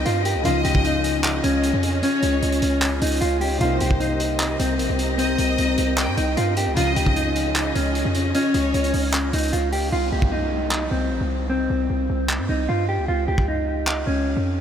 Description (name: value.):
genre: hip hop, trap.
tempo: 152 BPM.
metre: 4/4.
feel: half-time.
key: C phrygian.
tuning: A4 = 440 Hz.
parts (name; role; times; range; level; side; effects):
mellow electric guitar; melody; 0.0-14.6 s; C4 to G4; -23 LUFS; left 1 dB; spring reverb, ping-pong delay.
clear studio violin section; second line; 0.0-9.1 s; C5 to G5; -31 LUFS; equal; ping-pong delay.
warm concert grand piano; accompaniment; 0.0-9.9 s; C3 to Eb4; -30 LUFS; left 4 dB; lush chorus.
warm symphonic string section; sustained chords; 0.0-9.9 s; C4 to Eb5; -28 LUFS; left 1 dB; none.
hard-hitting 808-style bass; bass; 0.0-14.6 s; Bb1 to G2; -24 LUFS; right 1 dB; none.
downlifter; sound effects; 0.0-0.5, 9.9-13.1 s; none; -36 LUFS; left 1 dB; none.
crunchy breakbeat drum kit; drums; 0.1-14.0 s; handclaps, hi-hat, kick drum; -27 LUFS; right 1 dB; none.
room: moderate huge ambient reverb, RT60 6.7 s.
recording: dreamy mix soaked in reverb.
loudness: -19 LUFS.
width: side -8 dB against mid.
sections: 0.0-9.9 A section; 9.9-14.6 B section.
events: hi-hats muted 9.9-14.6.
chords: 0.5 Dbadd9; 3.6 Cm7; 6.8 Dbadd9; 9.9 Cm; 13.1 Dbadd9.